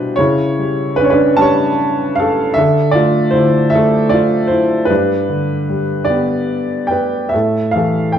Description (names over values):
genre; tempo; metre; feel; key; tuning
classical, lyrical solo piano; 50 BPM (dotted quarters); 6/8; uneven beats, rubato; unclear; A4 = 440 Hz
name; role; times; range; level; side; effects
warm upright piano; solo; 0.0-8.2 s; G2 to A5; -12 LUFS; equal; none
room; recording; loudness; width
moderate recital hall reverb, RT60 1.4 s; dark, warm production; -12 LUFS; side -9 dB against mid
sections
0.0-8.2 A section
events
none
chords
0.2 A7/C#; 2.6 Dm; 4.9 G; 7.3 A5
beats
| 0.18 1.39 | 2.56 3.73 | 4.90 6.09 | 7.34